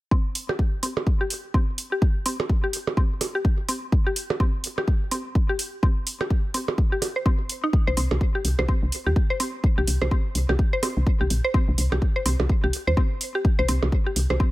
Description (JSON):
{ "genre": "minimal techno", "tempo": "126 BPM", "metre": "4/4", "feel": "swing 59% on 16ths", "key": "C minor", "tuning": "A4 = 435 Hz", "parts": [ { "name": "mallet-like synth pluck", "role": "riff", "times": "0.1-14.5 s", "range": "C4 to C5", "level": "-28 LUFS", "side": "left 1 dB", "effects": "chorus, sidechain pumping, digital delay" }, { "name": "electronic kick drum", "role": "drums", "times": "0.1-14.5 s", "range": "none", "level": "-21 LUFS", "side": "equal", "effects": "none" }, { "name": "electronic hi-hat", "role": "drums", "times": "0.4-14.3 s", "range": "none", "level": "-28 LUFS", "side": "right 2 dB", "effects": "none" }, { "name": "percussion blips", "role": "percussion", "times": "0.5-14.4 s", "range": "none", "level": "-29 LUFS", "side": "right 4 dB", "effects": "overdrive, digital delay" }, { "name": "woody FM bass", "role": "bass", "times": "7.9-14.4 s", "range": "Bb1 to Eb2", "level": "-23 LUFS", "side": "equal", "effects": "sidechain pumping" } ], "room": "digital ambience", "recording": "none", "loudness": "-21 LUFS", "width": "side -18 dB against mid", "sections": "0.1-14.5 A section", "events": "filter sweep on synth arpeggio sound 0.1-14.5", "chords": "none" }